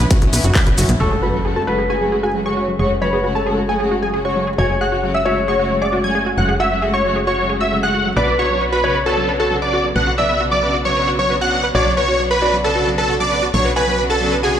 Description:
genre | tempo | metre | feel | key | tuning
uplifting trance | 134 BPM | 4/4 | straight | F# minor | A4 = 437 Hz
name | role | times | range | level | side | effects
warm symphonic string section | sustained chords | 0.0-14.6 s | C#3 to F#4 | -23 LUFS | left 1 dB | sidechain pumping
wide unison pluck | arpeggios | 0.0-14.6 s | F#3 to B4 | -23 LUFS | right 2 dB | cassette tape, sidechain pumping, dub echo
tight sequencer bass | bass | 0.0-14.6 s | F#1 to B1 | -23 LUFS | equal | sidechain pumping
electronic kick drum | drums | 0.1-0.6 s | none | -14 LUFS | equal | none
punchy analog drum machine | drums | 0.1-1.0 s | handclaps, hi-hat | -26 LUFS | left 2 dB | overdrive, low-pass filter on hats, low-pass filter on snare
cabasa | percussion | 0.1-1.0 s | none | -25 LUFS | right 2 dB | none
big supersaw lead | melody | 1.0-14.6 s | G#4 to G#5 | -19 LUFS | equal | sidechain pumping, low-pass filter, dub echo
felt-muted upright piano | second line | 1.0-14.6 s | A4 to G#5 | -24 LUFS | left 3 dB | ping-pong delay
plucky unison lead | second line | 1.0-14.6 s | G#5 to G#6 | -25 LUFS | equal | sidechain pumping, dub echo
impact | sound effects | 1.0-2.8 s | none | -26 LUFS | equal | none
room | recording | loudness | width
light reverb | played on a big sound system in a bare room, stone room reverb | -15 LUFS | side -9 dB against mid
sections
0.0-1.0 A section; 1.0-14.6 B section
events
band accent 0.6; impact 1.0-2.8; filter sweep on supersaw synth 1.0-14.6; filter sweep on synth pluck 1.0-14.6; filter sweep on digital synth lead 1.0-14.6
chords
0.0 Bmadd9; 1.0 F#madd9; 8.2 Bmadd9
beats
0.11 0.55 | 1.00 1.45 1.90 2.35 | 2.79 3.24 3.69 4.14 | 4.58 5.03 5.48 5.93 | 6.38 6.82 7.27 7.72 | 8.17 8.61 9.06 9.51 | 9.96 10.40 10.85 11.30 | 11.75 12.20 12.64 13.09 | 13.54 13.99 14.44

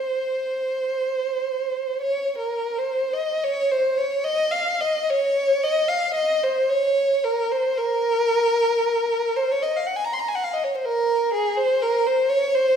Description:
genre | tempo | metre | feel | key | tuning
classical, free, expressive piece for unaccompanied violin | 35-62 BPM | 4/4 | rubato | unclear | A4 = 441 Hz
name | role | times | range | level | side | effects
warm violin | solo | 0.0-12.8 s | Ab4 to C6 | -20 LUFS | equal | none
room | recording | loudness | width
wet recital hall reverb, RT60 1.4 s | heard from further back in the room | -20 LUFS | side -7 dB against mid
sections
0.0-3.4 A section; 3.4-12.8 B section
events
none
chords
none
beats
0.67 2.01 | 3.44 4.55 5.63 6.71 | 7.79 8.83 9.85 10.84 | 11.83

